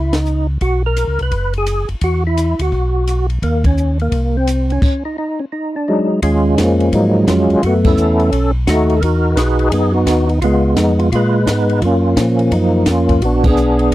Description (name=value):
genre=soul jazz organ trio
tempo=171 BPM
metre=4/4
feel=swing 64% on 8ths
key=Eb minor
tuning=A4 = 439 Hz
part: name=percussive tonewheel organ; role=melody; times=0.0-13.9 s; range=F3 to B4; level=-15 LUFS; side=equal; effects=slow rotary speaker, chorus vibrato
part: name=mellow tonewheel organ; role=bass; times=0.0-13.9 s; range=F#1 to Bb2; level=-16 LUFS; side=equal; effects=slow rotary speaker
part: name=compact cocktail drum kit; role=drums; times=0.1-13.9 s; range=crash cymbal, hi-hat, kick drum, ride cymbal, snare drum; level=-19 LUFS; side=equal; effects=none
room=little or no reverb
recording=dry, close 1970s-style studio recording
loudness=-12 LUFS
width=side -15 dB against mid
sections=0.0-6.2 A section; 6.2-13.9 B section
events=band accent 0.1, 3.6, 7.8, 13.4; stop 4.8-6.2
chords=0.0 N.C.; 0.6 Bsus2; 2.0 Esus2; 3.4 Bbmadd11/Eb; 4.1 Bbmadd9/C; 4.8 N.C.; 5.5 Ebmmaj7; 6.2 Ebm11; 7.6 Gbm7; 8.3 B7; 9.0 Emaj9; 10.4 Db7; 11.8 Gbmaj7; 13.2 Bb7b9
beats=0.27 | 0.62 0.97 1.32 1.67 | 2.02 2.37 2.72 3.07 | 3.42 3.77 4.12 4.47 | 4.82 5.17 5.53 5.88 | 6.22 6.58 6.93 7.28 | 7.63 7.97 8.32 8.68 | 9.03 9.37 9.72 10.07 | 10.42 10.77 11.12 11.47 | 11.82 12.17 12.52 12.87 | 13.22 13.57 13.92